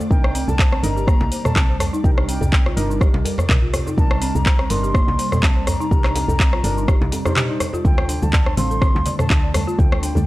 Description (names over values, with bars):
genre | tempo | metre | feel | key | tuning
afro house | 124 BPM | 4/4 | swing 55% on 16ths | unclear | A4 = 443 Hz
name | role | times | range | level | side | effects
ethereal airy pad | sustained chords | 0.0-10.3 s | C3 to D5 | -30 LUFS | right 1 dB | ensemble chorus, built-in reverb, sidechain pumping
folk marimba with medium hard mallets | arpeggios | 0.0-10.1 s | Bb3 to D5 | -28 LUFS | equal | sidechain pumping
deep mellow chord stab | stabs | 0.0-10.3 s | C4 to C5 | -31 LUFS | right 2 dB | chorus, sidechain pumping, analog delay
afro-pop drum kit | drums | 0.0-10.3 s | cabasa, handclaps, hi-hat, rim click, toms | -23 LUFS | equal | studio reverb
djembe | percussion | 0.0-10.2 s | none | -25 LUFS | equal | none
mellow hollow jazz flute | melody | 0.1-10.3 s | G5 to C6 | -28 LUFS | left 1 dB | none
woody FM bass | bass | 0.1-10.3 s | G1 to D2 | -23 LUFS | equal | sidechain pumping
electronic kick drum | drums | 0.1-9.9 s | none | -17 LUFS | equal | studio reverb
congas | percussion | 7.8-10.2 s | none | -28 LUFS | left 2 dB | none
room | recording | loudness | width
studio ambience | dry, gritty hardware recording, transformer saturation, cassette tape | -16 LUFS | side -18 dB against mid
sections
0.0-10.3 A section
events
none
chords
0.1 Cm7; 7.9 Dm7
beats
| 0.11 0.59 1.08 1.56 | 2.04 2.53 3.01 3.50 | 3.98 4.46 4.95 5.43 | 5.92 6.40 6.88 7.37 | 7.85 8.34 8.82 9.30 | 9.79